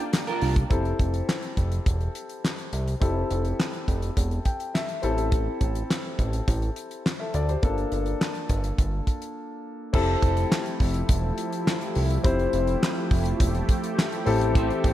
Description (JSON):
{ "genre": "early-eighties boogie funk", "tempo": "104 BPM", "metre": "4/4", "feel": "straight", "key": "unclear", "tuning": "A4 = 441 Hz", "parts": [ { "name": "warm baby grand piano", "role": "accompaniment", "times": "0.0-14.9 s", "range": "Bb3 to G5", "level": "-29 LUFS", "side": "left 4 dB", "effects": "none" }, { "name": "lush unison pad", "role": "sustained chords", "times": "0.0-0.7, 9.9-14.9 s", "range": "E3 to G5", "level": "-31 LUFS", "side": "right 1 dB", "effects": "chorus" }, { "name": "electric guitar at the edge of break-up", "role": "riff", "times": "0.0-0.6, 14.6-14.9 s", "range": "D4 to C5", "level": "-30 LUFS", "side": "right 4 dB", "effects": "analog chorus" }, { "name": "damped 70s drum kit", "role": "drums", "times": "0.1-14.9 s", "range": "crash cymbal, handclaps, hi-hat, kick drum, snare drum", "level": "-25 LUFS", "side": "equal", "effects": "none" }, { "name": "fat analog bass", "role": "bass", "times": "0.4-14.9 s", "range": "E1 to D2", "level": "-26 LUFS", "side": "equal", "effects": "none" } ], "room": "light reverb, small room ambience", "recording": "none", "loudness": "-23 LUFS", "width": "side -13 dB against mid", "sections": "0.7-9.9 A section; 9.9-14.9 B section", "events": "grand piano fill 4.2-5.3; break 9.4-9.9", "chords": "0.0 Gm7; 0.7 Fmaj9; 5.0 Am7; 7.6 Gm7; 9.9 Fmaj9; 14.3 Am7", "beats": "0.13 | 0.71 1.28 1.86 2.44 | 3.02 3.59 4.17 4.75 | 5.32 5.90 6.48 7.05 | 7.63 8.21 8.78 9.36 | 9.94 10.52 11.09 11.67 | 12.24 12.82 13.40 13.98 | 14.55" }